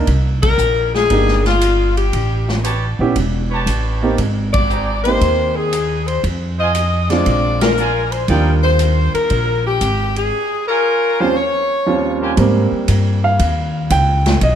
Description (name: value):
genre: jazz, big band swing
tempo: 117 BPM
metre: 4/4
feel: swing 69% on 8ths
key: Eb major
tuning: A4 = 440 Hz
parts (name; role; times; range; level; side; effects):
- clear baby grand piano; accompaniment; 0.0-14.6 s; Eb2 to G5; -19 LUFS; right 3 dB; none
- upright bass; bass; 0.0-14.6 s; E1 to Ab2; -17 LUFS; equal; none
- swinging big-band drum kit; drums; 0.1-14.6 s; hi-hat, kick drum, ride cymbal, snare drum; -23 LUFS; equal; none
- clear saxophone section; melody; 0.4-12.2 s; F4 to Eb5; -17 LUFS; left 3 dB; none
- clear trumpet section; stabs; 2.6-12.3 s; Eb4 to Bb5; -24 LUFS; right 3 dB; none
room: light reverb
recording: dark, warm production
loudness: -14 LUFS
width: side -9 dB against mid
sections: 0.0-12.4 A section; 12.4-14.6 B section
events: band accent 0.3, 4.4, 7.5; grand piano solo 12.4-14.6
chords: 0.1 Cm7; 2.1 A9; 4.2 Abmaj9; 6.2 Fm7; 7.3 Bb7; 8.3 Ebmaj7; 10.3 Eb13; 12.4 Abmaj9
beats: | 0.07 0.58 1.10 1.61 | 2.12 2.64 3.15 3.67 | 4.18 4.69 5.20 5.72 | 6.23 6.74 7.25 7.77 | 8.28 8.79 9.30 9.81 | 10.33 10.84 11.35 11.86 | 12.37 12.88 13.39 13.90 | 14.41